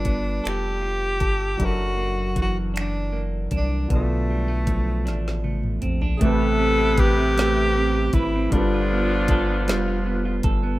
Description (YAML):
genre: slow six-eight R&B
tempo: 52 BPM (dotted quarters)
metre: 6/8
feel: straight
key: A minor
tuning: A4 = 439 Hz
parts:
  - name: warm tenor saxophone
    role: melody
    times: 0.0-10.1 s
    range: A3 to A4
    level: -25 LUFS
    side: equal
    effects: slapback echo
  - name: semi-hollow electric guitar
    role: second line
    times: 0.0-10.8 s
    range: F#2 to B4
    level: -27 LUFS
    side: right 4 dB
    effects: spring reverb
  - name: clear grand piano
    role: accompaniment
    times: 0.0-10.8 s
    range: C3 to B4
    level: -31 LUFS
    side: left 2 dB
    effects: none
  - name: round analog bass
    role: bass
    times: 0.0-10.8 s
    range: F1 to C2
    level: -25 LUFS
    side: equal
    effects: none
  - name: smooth R&B drum kit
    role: drums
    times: 0.0-10.6 s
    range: finger snaps, hi-hat, kick drum, snare drum, toms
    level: -24 LUFS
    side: equal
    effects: none
  - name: clear horn section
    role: stabs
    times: 6.2-10.4 s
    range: C3 to B4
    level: -28 LUFS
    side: left 2 dB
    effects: none
room: digital ambience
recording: rough home demo mix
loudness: -20 LUFS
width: side -17 dB against mid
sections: 0.0-6.2 A section; 6.2-10.8 B section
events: drum fill 5.1-6.2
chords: 0.0 G9; 1.6 F#7alt; 3.9 Bm7b5; 6.2 Am9; 8.5 G9